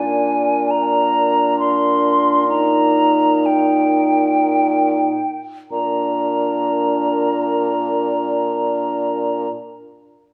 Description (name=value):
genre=classical, slow romantic movement for wind quintet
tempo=48-68 BPM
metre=3/4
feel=rubato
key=Bb major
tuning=A4 = 439 Hz
part: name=hollow concert flute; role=melody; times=0.0-9.5 s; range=G5 to C6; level=-21 LUFS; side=equal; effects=none
part: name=clear French horn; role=accompaniment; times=0.0-9.5 s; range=D4 to Eb4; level=-23 LUFS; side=equal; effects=none
part: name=mellow clarinet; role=accompaniment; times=0.0-9.5 s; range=Bb4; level=-33 LUFS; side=equal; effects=none
part: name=clear bassoon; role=bass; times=0.0-9.5 s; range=Bb2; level=-23 LUFS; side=equal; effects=none
room=wet recital hall reverb, RT60 1.4 s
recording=none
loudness=-18 LUFS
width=mono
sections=0.0-5.7 A section; 5.7-9.1 B section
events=slowing down 0.0-5.7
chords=0.0 Bb7; 2.5 Eb/Bb; 5.7 Bb